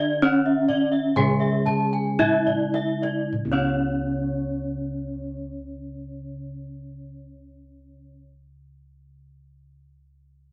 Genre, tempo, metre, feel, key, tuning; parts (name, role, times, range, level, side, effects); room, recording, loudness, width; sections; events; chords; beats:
Balinese gamelan; 51-67 BPM; 4/4; straight; A4 = 440 Hz
gamelan-type bronze metallophone; melody; 0.0-8.2 s; C#4 to G#4-30c; -27 LUFS; equal
gamelan-type bronze metallophone; accompaniment; 0.0-8.2 s; C#3 to G#3-30c; -34 LUFS; equal
gamelan-type bronze metallophone; arpeggios; 0.0-8.2 s; C#5 to G#5-30c; -30 LUFS; equal
gamelan-type bossed gongs; bass; 0.0-8.1 s; C#2 to D4+20c; -33 LUFS; equal
kendang; percussion; 0.2-3.9 s; -34 LUFS; equal
gamelan-type bronze metallophone; arpeggios; 0.7-8.2 s; C#5 to A5-20c; -33 LUFS; equal
moderate small room ambience, RT60 0.5 s; nothing above 11.0 kHz; -23 LUFS; mono
0.0-3.3 A section; 3.3-8.1 B section
slowing down 0.0-3.3; drum fill 2.5-3.3
0.22 1.16 2.19 | 3.32 4.51 5.69 6.88